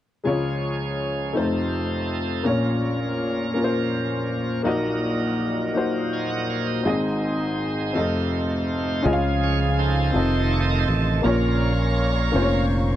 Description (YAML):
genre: gospel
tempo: 55 BPM (dotted quarters)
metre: 6/8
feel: straight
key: Db major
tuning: A4 = 440 Hz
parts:
  - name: warm upright piano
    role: accompaniment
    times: 0.2-13.0 s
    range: F1 to F5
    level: -23 LUFS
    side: left 2 dB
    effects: none
  - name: bright tonewheel organ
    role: sustained chords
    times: 0.3-12.7 s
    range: Bb2 to Ab5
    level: -28 LUFS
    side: right 6 dB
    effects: fast rotary speaker, overdrive
  - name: warm studio string section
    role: sustained chords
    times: 9.0-13.0 s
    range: Db4 to Db6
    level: -34 LUFS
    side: equal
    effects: none
  - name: fingered electric bass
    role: bass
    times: 9.1-13.0 s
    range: F1 to Db2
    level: -22 LUFS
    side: right 1 dB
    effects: none
room: light reverb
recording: dry, close 1970s-style studio recording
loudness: -20 LUFS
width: side -12 dB against mid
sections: 0.3-9.1 A section; 9.1-13.0 B section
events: tonewheel organ solo 9.1-13.0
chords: 0.3 Db; 1.4 F7; 2.5 Bbm; 4.7 Ebm/Bb; 6.9 Ab; 8.0 F7; 9.1 Db; 10.1 F7; 11.2 Bbm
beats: | 0.26 1.36 | 2.46 3.56 | 4.66 5.76 | 6.86 7.96 | 9.05 10.15 | 11.24 12.34